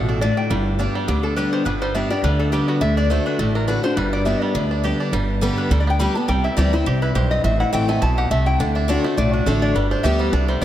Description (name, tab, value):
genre	bluegrass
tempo	208 BPM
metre	4/4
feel	swing 55% on 8ths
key	G major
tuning	A4 = 435 Hz
part	bluegrass banjo	melody	0.0-10.6 s	D3 to G4	-28 LUFS	right 4 dB	diffuse ambient delay
part	lap resonator guitar	melody	0.0-10.6 s	F#4 to B5	-24 LUFS	left 2 dB	diffuse ambient delay
part	picked steel-string acoustic guitar	accompaniment	0.0-10.6 s	G2 to G4	-22 LUFS	left 1 dB	none
part	upright bass	bass	0.0-10.6 s	G1 to D2	-21 LUFS	right 1 dB	none
room	moderate cathedral reverb, RT60 4.6 s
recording	dreamy mix soaked in reverb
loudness	-17 LUFS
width	side -12 dB against mid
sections	0.0-5.1 A section; 5.1-10.6 B section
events	none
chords	0.0 D5; 0.5 G; 2.8 D; 4.0 G; 6.3 C; 7.4 Am; 8.6 D; 9.8 G